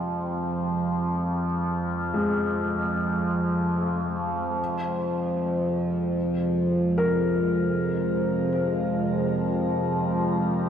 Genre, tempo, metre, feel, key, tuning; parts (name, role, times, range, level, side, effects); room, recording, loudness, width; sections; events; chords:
dark ambient drone; free time; F minor; A4 = 438 Hz
sweeping resonant pad; sustained chords; 0.0-10.7 s; C3 to F4; -32 LUFS; right 1 dB; chorus
dark concert grand piano; arpeggios; 0.0-10.7 s; F2 to Bb4; -32 LUFS; left 2 dB; diffuse ambient delay, shimmer reverb
overtone-sweeping drone; drone; 0.0-10.7 s; F2 to F3; -24 LUFS; equal; chorus, built-in reverb
wet cathedral reverb, RT60 5.1 s; -23 LUFS; side -8 dB against mid
0.0-4.6 A section; 4.6-10.7 B section
0.0 Fm